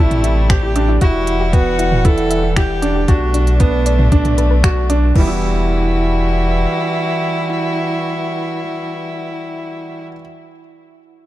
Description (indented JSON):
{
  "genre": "piano and strings electronica",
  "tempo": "116 BPM",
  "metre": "4/4",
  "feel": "straight",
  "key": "E minor",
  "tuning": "A4 = 440 Hz",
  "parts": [
    { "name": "clear viola", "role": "melody", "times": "0.0-10.1 s", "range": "D4 to A4", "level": "-23 LUFS", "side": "equal", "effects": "ping-pong delay" },
    { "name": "muted string quartet", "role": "sustained chords", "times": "0.0-10.1 s", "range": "B2 to F#5", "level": "-22 LUFS", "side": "equal", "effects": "sidechain pumping" },
    { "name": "soft round pluck", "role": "arpeggios", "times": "0.0-5.4 s", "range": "D4 to A5", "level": "-28 LUFS", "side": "left 5 dB", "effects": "none" },
    { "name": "clear baby grand piano", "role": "riff", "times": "0.0-10.2 s", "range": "E3 to G4", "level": "-21 LUFS", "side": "right 2 dB", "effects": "ping-pong delay" },
    { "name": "warm sub bass", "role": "bass", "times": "0.0-6.7 s", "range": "E1 to B1", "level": "-17 LUFS", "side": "equal", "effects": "sidechain pumping" },
    { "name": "organic electronic drum kit", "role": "drums", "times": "0.1-5.3 s", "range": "crash cymbal, finger snaps, hi-hat, toms", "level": "-23 LUFS", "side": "equal", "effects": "none" },
    { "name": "electronic kick drum", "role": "drums", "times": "0.5-5.3 s", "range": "none", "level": "-13 LUFS", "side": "equal", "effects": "none" }
  ],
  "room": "little or no reverb",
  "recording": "dark, warm production",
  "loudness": "-13 LUFS",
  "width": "side -14 dB against mid",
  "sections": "0.0-5.2 A section; 5.2-9.3 B section",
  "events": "drop 0.0-5.2",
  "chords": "0.0 Am7; 1.0 Emadd9; 3.1 Bm7; 5.2 Emadd9"
}